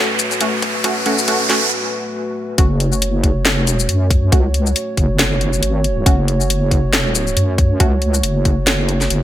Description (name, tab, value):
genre	deep dubstep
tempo	138 BPM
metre	4/4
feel	swing 56% on 16ths, half-time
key	F# minor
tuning	A4 = 441 Hz
part	dark analog pad	sustained chords	0.0-9.2 s	A3 to C#5	-23 LUFS	right 1 dB	chorus
part	filtered dub chord stab	stabs	0.0-7.9 s	A3 to F#4	-22 LUFS	right 1 dB	chorus, cassette tape, dub echo
part	riser	sound effects	0.0-1.7 s	none	-19 LUFS	right 2 dB	none
part	garage drum kit	drums	0.2-9.2 s	hi-hat, shaker, snare drum	-18 LUFS	left 2 dB	high-pass filter on hats, high-pass filter on perc, high-pass filter on snare, gated reverb
part	electronic kick drum	drums	0.6-8.6 s	none	-14 LUFS	equal	high-pass filter on kick
part	deep soft wobble bass	bass	2.6-9.2 s	F#1 to F#2	-17 LUFS	equal	chorus
room	light reverb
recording	bright 1980s-style digital production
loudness	-14 LUFS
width	side -12 dB against mid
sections	0.0-2.6 A section; 2.6-9.2 B section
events	build-up 0.0-2.6; riser 0.0-1.7; break 1.7-2.6; drop 2.6-9.2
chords	0.0 F#m